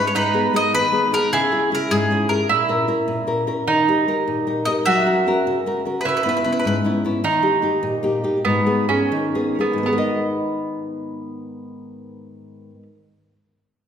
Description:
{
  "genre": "italian folk, Italian serenade",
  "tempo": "77-104 BPM (dotted quarters)",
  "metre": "6/8",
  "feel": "straight",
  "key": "G# minor",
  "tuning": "A4 = 440 Hz",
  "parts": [
    { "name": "mandolin", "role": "melody", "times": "0.0-2.5, 4.7-6.8 s", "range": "G#4 to E5", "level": "-21 LUFS", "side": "left 1 dB", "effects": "none" },
    { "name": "nylon-string guitar", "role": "accompaniment", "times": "0.0-12.9 s", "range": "G#2 to D#5", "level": "-21 LUFS", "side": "left 2 dB", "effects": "none" },
    { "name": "mandolin", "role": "second line", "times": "0.1-12.8 s", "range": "B3 to F#4", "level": "-23 LUFS", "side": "right 5 dB", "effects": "none" }
  ],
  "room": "wet recital hall reverb, RT60 1.5 s",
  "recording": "recorded in a church or concert hall",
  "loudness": "-17 LUFS",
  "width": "side -8 dB against mid",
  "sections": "0.2-9.8 A section; 9.8-12.9 B section",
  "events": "slowing down 7.2-9.8",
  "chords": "0.2 G#madd9; 1.3 C#m; 2.5 A#dim; 3.7 D#; 4.9 F#; 6.0 C#m7; 7.2 D#; 8.4 G#madd9"
}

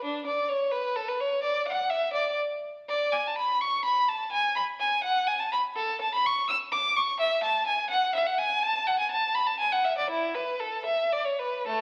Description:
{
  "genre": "classical, baroque-style suite movement for unaccompanied violin",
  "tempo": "72-87 BPM (dotted quarters)",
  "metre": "12/8",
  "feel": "rubato",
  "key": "A major",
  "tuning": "A4 = 442 Hz",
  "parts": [
    { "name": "clear violin", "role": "solo", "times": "0.0-11.8 s", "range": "A3 to E6", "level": "-27 LUFS", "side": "equal", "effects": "none" }
  ],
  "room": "wet recital hall reverb, RT60 1.3 s",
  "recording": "very old 78 rpm record, vinyl crackle",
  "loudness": "-27 LUFS",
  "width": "mono",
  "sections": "0.0-11.8 A section",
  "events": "none",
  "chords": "none"
}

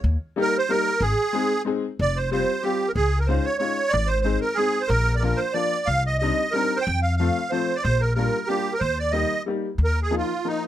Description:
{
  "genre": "musette waltz",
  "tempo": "185 BPM",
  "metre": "3/4",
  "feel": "swing 55% on 8ths",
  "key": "Eb major",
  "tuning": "A4 = 440 Hz",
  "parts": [
    { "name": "upright bass", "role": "bass", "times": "0.0-10.2 s", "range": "F1 to F2", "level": "-23 LUFS", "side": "equal", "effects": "none" },
    { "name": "musette accordion", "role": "melody", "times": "0.4-10.6 s", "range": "Eb4 to G5", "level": "-23 LUFS", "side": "right 3 dB", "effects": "none" },
    { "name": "bright upright piano", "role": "accompaniment", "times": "0.4-10.6 s", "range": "F3 to Ab4", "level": "-26 LUFS", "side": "left 5 dB", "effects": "none" }
  ],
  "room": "light reverb",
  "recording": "close, detailed microphones",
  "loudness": "-20 LUFS",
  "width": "side -12 dB against mid",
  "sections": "0.0-2.0 A section; 2.0-9.8 B section",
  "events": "none",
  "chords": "0.0 Eb; 1.0 Ab; 2.0 Fsus2; 3.0 Dbadd9; 3.9 Ab; 4.9 Bb; 5.9 Cmadd9; 6.9 F; 7.8 Bb6; 8.8 Eb; 9.8 Ebsus2"
}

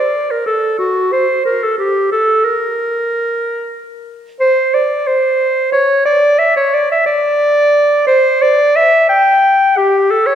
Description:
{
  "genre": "classical, baroque-style fantasia for unaccompanied clarinet",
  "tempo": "91 BPM",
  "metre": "4/4",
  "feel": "rubato",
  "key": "unclear",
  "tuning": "A4 = 439 Hz",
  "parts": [
    { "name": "warm clarinet", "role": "solo", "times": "0.0-10.3 s", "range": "F#4 to G5", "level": "-11 LUFS", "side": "equal", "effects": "none" }
  ],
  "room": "wet concert hall reverb, RT60 2.0 s",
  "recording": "recorded in a church or concert hall",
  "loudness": "-11 LUFS",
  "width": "side -9 dB against mid",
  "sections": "0.0-10.3 A section",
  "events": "none",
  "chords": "none"
}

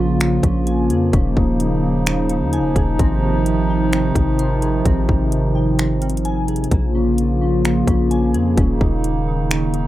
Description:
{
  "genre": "hip hop, atmospheric cloud-rap",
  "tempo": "129 BPM",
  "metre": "4/4",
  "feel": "half-time",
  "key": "unclear",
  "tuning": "A4 = 445 Hz",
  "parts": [
    { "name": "hollow soft pad", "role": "sustained chords", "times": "0.0-9.9 s", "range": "C3 to F4", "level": "-18 LUFS", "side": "equal", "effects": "chorus, sidechain pumping" },
    { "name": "glassy digital keys", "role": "arpeggios", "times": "0.0-9.9 s", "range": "G3 to C6", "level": "-28 LUFS", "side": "left 1 dB", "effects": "chorus, tremolo, low-pass filter, tape echo, plate reverb" },
    { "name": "long sustained 808-style bass", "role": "bass", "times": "0.0-9.9 s", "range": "Eb1 to F2", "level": "-20 LUFS", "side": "equal", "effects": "none" },
    { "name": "trap drum kit", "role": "drums", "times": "0.2-9.8 s", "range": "finger snaps, hi-hat, kick drum", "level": "-20 LUFS", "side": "equal", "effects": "none" }
  ],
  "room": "moderate small room ambience, RT60 0.5 s",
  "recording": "rough home demo mix",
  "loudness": "-15 LUFS",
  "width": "side -14 dB against mid",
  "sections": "0.0-9.9 A section",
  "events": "none",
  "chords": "0.0 Bbm7; 1.1 Eb7sus4; 3.0 Abmaj7; 6.7 Bbm7; 8.6 Eb7(no3)"
}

